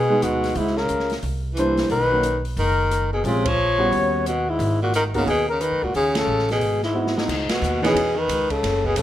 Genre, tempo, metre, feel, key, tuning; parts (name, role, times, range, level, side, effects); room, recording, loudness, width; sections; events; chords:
jazz, small-group swing and bop; 178 BPM; 4/4; swing 62% on 8ths; G# minor; A4 = 440 Hz
breathy flugelhorn; melody; 0.0-9.0 s; D#4 to C#5; -22 LUFS; left 3 dB; plate reverb
bright tenor saxophone; second line; 0.0-9.0 s; G#2 to E#3; -26 LUFS; right 3 dB
upright bass; bass; 0.0-9.0 s; F#1 to B2; -26 LUFS; right 1 dB
warm grand piano; accompaniment; 0.1-7.9 s; E3 to G#4; -25 LUFS; right 2 dB
open jazz drum kit; drums; 0.2-9.0 s; crash cymbal, hi-hat, kick drum, ride cymbal, rim click, snare drum; -30 LUFS; equal
moderate large studio reverb, RT60 0.9 s; -19 LUFS; side -12 dB against mid
0.0-7.3 A section; 7.3-9.0 B section
band accent 3.4, 6.1, 7.5; drum fill 6.9-7.3
0.0 Emaj7 (rootless); 0.6 C#m6; 1.2 C9; 1.9 Bmaj7; 3.2 A#m9; 3.9 D#7alt; 4.6 G#m9; 5.9 Amaj7#11; 6.6 G#7alt; 7.3 C#m9